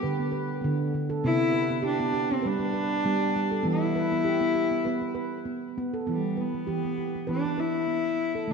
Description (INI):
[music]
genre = world meditative, meditative tuned percussion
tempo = 99 BPM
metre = 4/4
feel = swing 55% on 16ths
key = E minor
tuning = A4 = 440 Hz
[part]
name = dark cello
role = melody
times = 0.0-8.5 s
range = G3 to E4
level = -28 LUFS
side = left 3 dB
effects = ping-pong delay
[part]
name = handpan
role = arpeggios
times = 0.0-8.5 s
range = C3 to B4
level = -28 LUFS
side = right 3 dB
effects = ping-pong delay
[sound]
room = wet echo chamber reverb, RT60 2.1 s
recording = dark, warm production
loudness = -25 LUFS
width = side -5 dB against mid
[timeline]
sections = 0.0-6.1 A section; 6.1-8.5 B section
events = none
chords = 0.0 G (rootless); 1.2 C; 3.7 Em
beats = 0.04 0.64 | 1.24 1.85 2.45 3.05 | 3.66 4.26 4.86 5.47 | 6.07 6.68 7.29 7.89 | 8.50